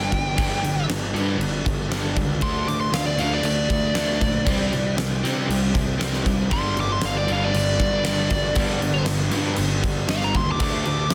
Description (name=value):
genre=hard rock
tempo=117 BPM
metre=4/4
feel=straight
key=unclear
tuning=A4 = 441 Hz
part: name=biting lead guitar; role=melody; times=0.0-11.1 s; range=D5 to D6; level=-28 LUFS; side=equal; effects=overdrive, slapback echo
part: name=overdriven tonewheel organ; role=sustained chords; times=0.0-11.1 s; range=G3 to D5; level=-39 LUFS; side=equal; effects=none
part: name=cranked stack guitar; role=riff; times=0.0-11.1 s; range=G2 to D4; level=-32 LUFS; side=equal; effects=none
part: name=overdriven electric guitar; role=riff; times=0.0-11.1 s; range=G2 to D4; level=-31 LUFS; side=equal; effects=none
part: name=fuzz picked electric bass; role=bass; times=0.0-11.1 s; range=G1 to C3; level=-29 LUFS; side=equal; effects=overdrive
part: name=huge arena drum kit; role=drums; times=0.1-11.1 s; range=crash cymbal, kick drum, snare drum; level=-28 LUFS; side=equal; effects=none
part: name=high-gain distorted guitar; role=riff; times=6.5-11.1 s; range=G2 to D4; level=-35 LUFS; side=equal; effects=none
room=moderate large studio reverb, RT60 1.4 s, small room ambience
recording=dense, heavily limited modern master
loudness=-22 LUFS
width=mono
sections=0.0-11.1 A section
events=lead electric guitar solo 0.0-11.1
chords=0.0 G5; 2.4 D5; 4.5 C5; 6.5 G5; 10.6 D5